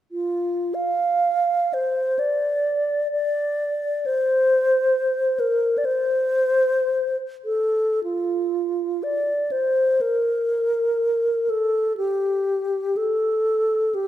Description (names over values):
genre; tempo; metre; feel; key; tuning
classical, free, expressive piece for unaccompanied alto flute; 61 BPM; 4/4; uneven beats, rubato; unclear; A4 = 437 Hz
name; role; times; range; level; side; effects
alto flute; solo; 0.1-14.1 s; F4 to F5; -20 LUFS; equal; none
room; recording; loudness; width
moderate scoring stage reverb, RT60 1.9 s; minimal, uncompressed stereo recording; -20 LUFS; side -12 dB against mid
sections
0.1-8.0 A section; 8.0-14.1 B section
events
none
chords
none